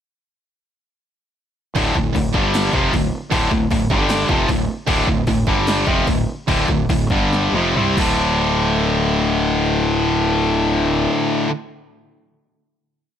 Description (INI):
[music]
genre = heavy metal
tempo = 131-154 BPM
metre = 4/4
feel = straight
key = D minor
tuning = A4 = 441 Hz
[part]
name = high-gain distorted guitar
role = riff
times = 1.8-11.5 s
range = D2 to C4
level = -22 LUFS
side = right 12 dB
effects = distortion
[part]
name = tight distorted guitar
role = riff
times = 1.8-11.5 s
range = D2 to C4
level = -19 LUFS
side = left 6 dB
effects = distortion
[part]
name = fuzz fingered electric bass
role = bass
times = 1.8-11.1 s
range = D1 to C2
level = -23 LUFS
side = equal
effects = overdrive
[part]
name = punchy analog drum machine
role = drums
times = 1.8-8.1 s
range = crash cymbal, kick drum, snare drum, toms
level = -22 LUFS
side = right 1 dB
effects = none
[sound]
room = light reverb, digital ambience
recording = none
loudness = -16 LUFS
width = side -9 dB against mid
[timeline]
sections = 1.8-8.2 riff; 8.2-11.8 final hit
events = slowing down 4.9-8.2; drum fill 7.3-8.2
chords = 1.8 D5; 2.3 G5; 2.7 Dm; 3.9 G5; 4.3 Dm; 5.5 G5; 5.9 Dm; 7.1 G5; 7.5 Fsus2; 8.0 D5